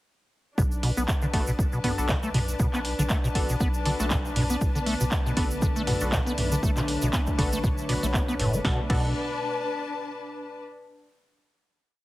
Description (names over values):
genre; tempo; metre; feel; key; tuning
acid house; 119 BPM; 4/4; swing 56% on 16ths; B minor; A4 = 439 Hz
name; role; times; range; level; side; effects
acid bass, square; riff; 0.6-9.1 s; A2 to B3; -29 LUFS; equal; tube saturation, analog chorus, sidechain pumping, dub echo
round analog bass; bass; 0.6-9.1 s; F#1 to B1; -32 LUFS; equal; sidechain pumping
electronic kick drum; drums; 0.6-9.0 s; none; -27 LUFS; equal; none
egg shaker; percussion; 0.6-8.6 s; none; -38 LUFS; right 2 dB; none
clear studio string section; texture; 0.6-10.6 s; D4 to A5; -33 LUFS; left 2 dB; sidechain pumping
punchy analog drum machine; drums; 0.8-9.0 s; crash cymbal, handclaps, hi-hat, snare drum, toms; -32 LUFS; right 1 dB; none
band-passed chord stab; stabs; 1.3-9.1 s; B3 to B4; -34 LUFS; left 1 dB; chorus, dub echo
warm analog pad; sustained chords; 4.6-8.9 s; B2 to C#5; -34 LUFS; equal; lush chorus, sidechain pumping
room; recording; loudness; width
moderate small room ambience, RT60 0.5 s; heavily compressed radio sound; -23 LUFS; side -17 dB against mid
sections
0.6-8.6 groove; 8.6-10.7 final chord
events
none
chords
0.6 Bm7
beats
| 0.58 1.08 1.59 2.09 | 2.60 3.10 3.60 4.11 | 4.61 5.12 5.62 6.13 | 6.63 7.13 7.64 8.14 | 8.65 9.15 9.65 10.16